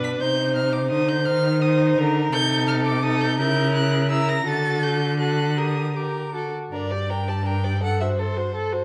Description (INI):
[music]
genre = quick classical-period movement for string quartet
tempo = 168 BPM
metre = 3/4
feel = rubato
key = G minor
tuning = A4 = 440 Hz
[part]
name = clear violin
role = melody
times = 0.0-8.7 s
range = C5 to B6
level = -30 LUFS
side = equal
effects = none
[part]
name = rich violin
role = second line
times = 0.0-8.8 s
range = A4 to D5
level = -28 LUFS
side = equal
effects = none
[part]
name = clear viola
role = accompaniment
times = 0.0-8.8 s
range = D4 to A4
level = -30 LUFS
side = equal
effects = none
[part]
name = clear cello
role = bass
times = 0.0-8.8 s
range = G2 to Eb3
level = -26 LUFS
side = equal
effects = none
[sound]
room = moderate recital hall reverb, RT60 1.4 s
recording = worn, warbling old tape, cassette tape, warbly pitch drift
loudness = -22 LUFS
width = mono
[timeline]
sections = 0.0-6.7 A section; 6.7-8.8 B section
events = none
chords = 0.2 Cm; 1.3 Cm/Eb; 2.3 Am7b5/C; 3.4 C#dim7; 4.5 D; 5.6 Gm/D; 6.3 D; 6.7 Gm; 7.8 F#dim/G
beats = | 0.20 0.56 0.91 | 1.27 1.62 1.98 | 2.33 2.68 3.04 | 3.39 3.75 4.10 | 4.46 4.82 5.19 | 5.57 5.96 6.34 | 6.72 7.09 7.46 | 7.82 8.18 8.54